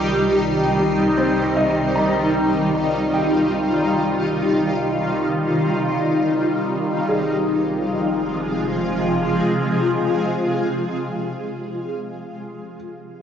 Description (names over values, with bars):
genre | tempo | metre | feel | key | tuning
ambient | free time | none | none | F minor | A4 = 440 Hz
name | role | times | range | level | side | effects
shimmering ambient pad | sustained chords | 0.0-11.0 s | C3 to Ab4 | -19 LUFS | equal | chorus, built-in reverb, phaser
felt-muted upright piano | arpeggios | 0.0-12.8 s | F3 to Bb5 | -26 LUFS | equal | tape echo
round analog bass | bass | 0.0-9.4 s | F1 to C2 | -40 LUFS | right 1 dB | none
wind-like tuned noise texture | texture | 0.0-7.1 s | C7 | -44 LUFS | right 2 dB | none
room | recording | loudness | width
wet spring reverb, RT60 1.2 s, digital ambience | home recording on cassette, nothing above 7.7 kHz | -18 LUFS | side -8 dB against mid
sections
0.0-7.1 A section; 7.1-10.2 B section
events
fade-out on analog synth bass 0.0-7.1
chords
0.0 Cm; 7.1 Fm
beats
free time